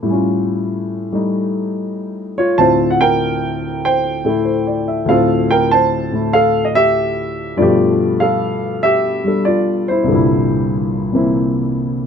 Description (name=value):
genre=solo jazz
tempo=96 BPM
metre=4/4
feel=swing 68% on 8ths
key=unclear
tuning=A4 = 440 Hz
part: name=warm baby grand piano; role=solo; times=0.0-12.1 s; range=C2 to A5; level=-14 LUFS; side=equal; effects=none
room=light reverb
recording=nothing above 10.3 kHz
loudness=-14 LUFS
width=side -7 dB against mid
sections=0.0-12.1 A section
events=none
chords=0.1 Aaug7; 2.6 Dm7; 7.6 G13; 10.1 C9